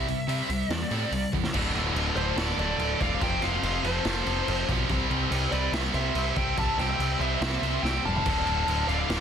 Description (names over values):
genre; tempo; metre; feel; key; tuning
hard rock; 143 BPM; 4/4; straight; D minor; A4 = 440 Hz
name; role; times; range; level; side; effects
bluesy overdriven lead guitar; melody; 0.0-9.2 s; C5 to A5; -31 LUFS; equal; distortion, slapback echo
scooped high-gain guitar; riff; 0.0-9.2 s; D2 to C4; -31 LUFS; right 15 dB; distortion
tight distorted guitar; riff; 0.0-9.2 s; D2 to C4; -32 LUFS; left 13 dB; distortion
growling picked electric bass; bass; 0.0-9.2 s; D1 to C3; -30 LUFS; equal; overdrive
raw garage drum kit; drums; 0.1-9.2 s; crash cymbal, hi-hat, kick drum, snare drum, toms; -31 LUFS; equal; none
octave-fuzz lead guitar; second line; 2.2-9.2 s; A4 to F5; -36 LUFS; right 5 dB; distortion
room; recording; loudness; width
studio ambience; dense, heavily limited modern master; -24 LUFS; side -8 dB against mid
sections
0.0-1.5 A section; 1.5-9.2 B section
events
drum fill 1.3, 7.8-8.3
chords
0.0 C; 1.5 D5; 3.2 F; 4.9 C; 8.3 Dm